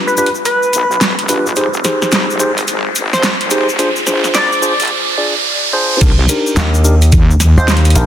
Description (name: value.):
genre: glitch hop.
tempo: 108 BPM.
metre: 4/4.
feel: swing 63% on 16ths.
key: C minor.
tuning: A4 = 440 Hz.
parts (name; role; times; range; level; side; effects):
mellow tine electric piano; stabs; 0.0-8.1 s; D4 to D5; -18 LUFS; equal; sidechain pumping, low-pass filter, ping-pong delay.
riser; sound effects; 0.4-6.0 s; none; -20 LUFS; right 2 dB; none.
sync lead; melody; 0.1-7.7 s; B4 to D5; -18 LUFS; equal; chorus, ping-pong delay.
cabasa; percussion; 0.1-8.1 s; none; -22 LUFS; left 4 dB; none.
dubstep drum kit; drums; 0.3-8.1 s; crash cymbal, hi-hat, snare drum; -18 LUFS; right 1 dB; studio reverb.
wobble bass; bass; 0.7-7.5 s; Eb1 to Eb2; -15 LUFS; equal; chorus, high-pass filter.
electronic kick drum; drums; 6.0-7.3 s; none; -10 LUFS; equal; studio reverb.
slap bass with an envelope filter; bass; 6.6-8.1 s; Bb1 to Eb2; -9 LUFS; equal; none.
room: moderate plate reverb, RT60 3.2 s.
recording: dense, heavily limited modern master, high-pass filter.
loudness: -10 LUFS.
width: side -10 dB against mid.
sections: 0.0-6.0 A section; 6.0-8.1 B section.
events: build-up 0.0-6.0; filter sweep 0.0-6.0; riser 0.4-6.0; drop 6.0-8.1.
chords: 0.0 G7; 1.6 Fm7 (rootless); 3.8 Bb7 (rootless); 6.0 Cm7.